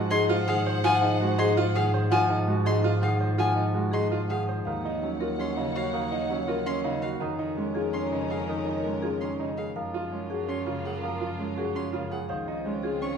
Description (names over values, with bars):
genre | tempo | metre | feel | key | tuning
classical, minimalist pattern music | 330 BPM (eighths) | 7/8 | straight | unclear | A4 = 440 Hz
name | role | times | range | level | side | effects
Celtic harp | accompaniment | 0.0-13.2 s | Db3 to Ab3 | -32 LUFS | left 1 dB | none
rich studio violin section | sustained chords | 0.0-1.9, 4.7-13.2 s | Bb3 to Gb5 | -35 LUFS | left 4 dB | none
clear concert grand piano | arpeggios | 0.0-13.2 s | Db4 to C5 | -31 LUFS | right 5 dB | none
rich double bass | bass | 0.0-13.2 s | Db2 to Ab2 | -31 LUFS | right 2 dB | none
marimba with medium hard mallets | melody | 0.1-13.1 s | Ab4 to Gb5 | -32 LUFS | left 5 dB | none
rich violin | arpeggios | 0.1-13.2 s | F5 to Db6 | -33 LUFS | left 2 dB | none
room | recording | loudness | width
wet recital hall reverb, RT60 1.4 s | recorded in a church or concert hall | -25 LUFS | side -7 dB against mid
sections
0.0-4.7 A section; 4.7-13.2 B section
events
none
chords
0.0 Ab7; 4.7 Ebm9; 7.2 Bbm7/F; 9.8 Gbmaj9; 12.3 Dbmaj7